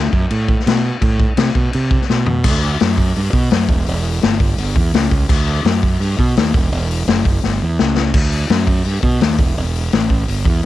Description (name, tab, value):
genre	garage rock duo or trio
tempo	169 BPM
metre	4/4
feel	straight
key	D major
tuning	A4 = 439 Hz
part	fuzz fingered electric bass	bass	0.0-10.6 s	E1 to C3	-17 LUFS	right 2 dB	overdrive, tube saturation
part	vintage drum kit	drums	0.1-10.7 s	crash cymbal, hi-hat, kick drum, snare drum, toms	-16 LUFS	left 2 dB	none
room	little or no reverb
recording	1960s-style stereo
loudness	-13 LUFS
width	side -14 dB against mid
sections	0.0-2.4 A section; 2.4-10.7 B section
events	drum fill 2.1-2.4, 7.4-8.1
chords	none